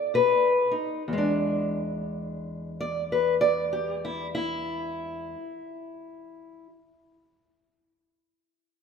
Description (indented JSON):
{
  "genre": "acoustic country blues, solo or duo",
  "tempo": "64 BPM",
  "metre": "4/4",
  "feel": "swing 63% on 8ths",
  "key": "E mixolydian",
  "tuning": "A4 = 440 Hz",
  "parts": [
    { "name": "fingerpicked steel-string acoustic guitar", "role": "solo", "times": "0.0-6.7 s", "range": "E2 to D5", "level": "-25 LUFS", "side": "left 1 dB", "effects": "none" }
  ],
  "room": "wet concert hall reverb, RT60 2.3 s",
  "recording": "none",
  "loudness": "-24 LUFS",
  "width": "side -6 dB against mid",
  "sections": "0.0-1.1 A section; 1.1-4.8 B section",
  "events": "slowing down 0.0-1.1; steel-string acoustic guitar solo 0.0-1.1",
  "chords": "0.0 B7; 1.1 E7"
}